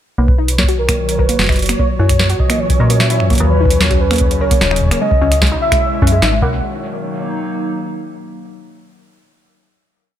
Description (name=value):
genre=IDM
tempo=149 BPM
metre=4/4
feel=straight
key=B major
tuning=A4 = 444 Hz
part: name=warm velvety synth lead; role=melody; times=0.2-6.6 s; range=A#4 to F#5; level=-20 LUFS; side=right 1 dB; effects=chorus, dub echo
part: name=warbly tape-like pad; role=sustained chords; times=0.2-8.2 s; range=A#2 to F#4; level=-22 LUFS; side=left 2 dB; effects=chorus, built-in reverb, vintage 12-bit sampler grit
part: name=warbly dusty pluck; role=arpeggios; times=0.2-6.6 s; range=G#3 to A#4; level=-23 LUFS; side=left 2 dB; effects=chorus, ping-pong delay
part: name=metallic FM bass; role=bass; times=0.2-6.6 s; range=D#1 to A#2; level=-16 LUFS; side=equal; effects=none
part: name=flickering grainy texture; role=texture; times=0.5-6.6 s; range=C#5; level=-28 LUFS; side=right 4 dB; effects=built-in reverb
part: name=electronic kick drum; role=drums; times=0.3-6.5 s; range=none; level=-16 LUFS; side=equal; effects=none
part: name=booming analog drum machine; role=drums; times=0.5-6.3 s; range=finger snaps, hi-hat, snare drum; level=-19 LUFS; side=equal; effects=none
room=little or no reverb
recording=none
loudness=-12 LUFS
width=side -11 dB against mid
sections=0.2-6.6 groove; 6.6-8.2 final chord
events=none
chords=0.2 Bmaj7; 1.8 F#7; 3.4 D#m7; 5.0 C#m9; 6.4 Bmaj7